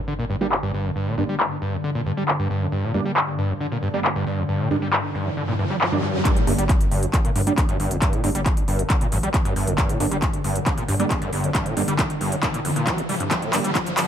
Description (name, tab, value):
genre	driving peak-time techno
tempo	136 BPM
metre	4/4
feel	straight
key	G minor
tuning	A4 = 440 Hz
part	swarming drone	drone	0.0-14.1 s	G2 to D3	-30 LUFS	left 1 dB	built-in reverb, sidechain pumping
part	impact and riser	sound effects	0.0-14.1 s	none	-31 LUFS	right 1 dB	none
part	screaming distorted acid line	riff	0.1-14.1 s	F2 to G3	-26 LUFS	equal	distortion, wide subtle chorus, sidechain pumping, digital delay
part	techno drum kit	drums	0.3-14.1 s	handclaps, hi-hat, shaker	-25 LUFS	left 1 dB	overdrive, sidechain pumping on hats, low-pass filter on hats, sidechain pumping on perc, low-pass filter on perc, low-pass filter on snare
part	rave stab	stabs	0.4-13.6 s	G3 to D4	-28 LUFS	right 4 dB	chorus, built-in reverb, cassette tape, sidechain pumping, digital delay
part	electronic kick drum	drums	6.3-13.8 s	none	-23 LUFS	equal	overdrive
part	gritty driven synth bass	bass	6.5-14.1 s	F1 to G2	-28 LUFS	equal	sidechain pumping
room	light reverb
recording	high-pass filter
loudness	-20 LUFS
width	side -9 dB against mid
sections	0.0-6.3 A section; 6.3-14.1 B section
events	impact 0.0-1.0; riser 4.4-6.3, 6.3-14.1; build-up 6.3-14.1; drum fill 6.3-14.1; filter sweep on acid bass 6.3-14.1; filter sweep 6.3-14.1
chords	0.0 Gm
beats	0.08 0.52 | 0.96 1.40 1.84 2.28 | 2.72 3.17 3.61 4.05 | 4.49 4.93 5.37 5.81 | 6.25 6.69 7.13 7.58 | 8.02 8.46 8.90 9.34 | 9.78 10.22 10.66 11.11 | 11.55 11.99 12.43 12.87 | 13.31 13.75